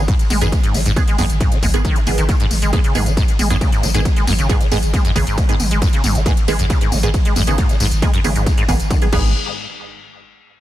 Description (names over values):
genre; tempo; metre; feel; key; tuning
driving peak-time techno; 136 BPM; 4/4; straight; G# minor; A4 = 440 Hz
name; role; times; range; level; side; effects
acid bass, saw; riff; 0.0-9.3 s; F#2 to B3; -21 LUFS; equal; ensemble chorus, sidechain pumping, ping-pong delay
filtered dub chord stab; stabs; 0.0-9.3 s; D#3 to G#4; -25 LUFS; right 4 dB; phaser, sidechain pumping, ping-pong delay
saturated sub bass; bass; 0.0-9.3 s; G#1; -20 LUFS; equal; overdrive, sidechain pumping, low-pass filter
electronic kick drum; drums; 0.1-9.2 s; none; -16 LUFS; equal; none
techno drum kit; drums; 0.1-9.2 s; crash cymbal, hi-hat, ride cymbal, tambourine, toms; -23 LUFS; right 1 dB; sidechain pumping on hats, sidechain pumping on perc, sidechain pumping on toms, sidechain pumping on cymbals
room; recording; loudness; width
little or no reverb; dense, heavily limited modern master; -14 LUFS; side -14 dB against mid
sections
0.0-9.3 A section; 9.3-10.6 B section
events
drop 0.0-9.3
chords
0.0 G#m; 9.3 N.C.